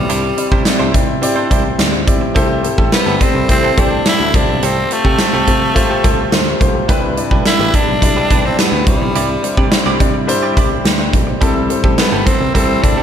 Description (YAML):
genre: 1980s-style pop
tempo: 106 BPM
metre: 4/4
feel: straight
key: C major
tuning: A4 = 444 Hz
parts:
  - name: raspy tenor saxophone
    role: melody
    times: 0.0-13.0 s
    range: G3 to E4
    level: -18 LUFS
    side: equal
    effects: slapback echo
  - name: warm grand piano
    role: accompaniment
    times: 0.0-13.0 s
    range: C3 to A5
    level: -18 LUFS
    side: left 2 dB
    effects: slapback echo
  - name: picked electric bass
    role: bass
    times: 0.0-13.0 s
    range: G1 to C3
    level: -21 LUFS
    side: equal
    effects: none
  - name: direct-recorded clean electric guitar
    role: riff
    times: 0.1-13.0 s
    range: C4 to D5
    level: -24 LUFS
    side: right 5 dB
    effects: lush chorus, slapback echo
  - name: huge arena drum kit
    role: drums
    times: 0.1-13.0 s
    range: hi-hat, kick drum, snare drum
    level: -15 LUFS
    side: equal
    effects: none
room: moderate lush hall reverb, RT60 2.2 s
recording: big arena sound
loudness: -11 LUFS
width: side -9 dB against mid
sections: 0.0-13.0 A section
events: grand piano fill 5.8-6.9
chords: 0.0 Cadd9; 2.4 Am7; 4.3 Fadd9; 6.9 Em7; 8.9 Cadd9; 11.4 Am7